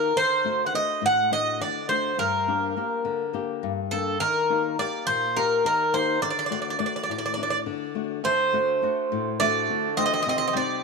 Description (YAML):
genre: greek folk, Greek bouzouki band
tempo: 208 BPM (eighths)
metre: 7/8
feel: straight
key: D phrygian dominant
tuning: A4 = 439 Hz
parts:
  - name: Greek bouzouki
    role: melody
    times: 0.0-10.8 s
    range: A4 to F#5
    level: -23 LUFS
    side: right 2 dB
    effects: none
  - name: flamenco guitar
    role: accompaniment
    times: 0.0-10.8 s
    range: G2 to G4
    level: -30 LUFS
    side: left 10 dB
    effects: none
  - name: Greek bouzouki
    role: second line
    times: 8.2-10.8 s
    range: G3 to C4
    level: -30 LUFS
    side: right 12 dB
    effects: none
room: moderate plate reverb, RT60 2.7 s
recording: 1960s-style stereo with parts hard left and right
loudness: -22 LUFS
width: side -4 dB against mid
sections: 0.0-8.2 A section; 8.2-10.8 A section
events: none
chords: 0.2 D; 2.2 Gm; 4.2 Eb; 6.2 D; 10.3 Cm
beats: | 0.17 0.45 0.74 1.03 1.32 1.61 1.90 | 2.19 2.48 2.76 3.05 3.34 3.63 3.92 | 4.21 4.50 4.79 5.07 5.36 5.65 5.94 | 6.23 6.52 6.81 7.09 7.38 7.67 7.96 | 8.25 8.54 8.82 9.11 9.40 9.69 9.98 | 10.26 10.55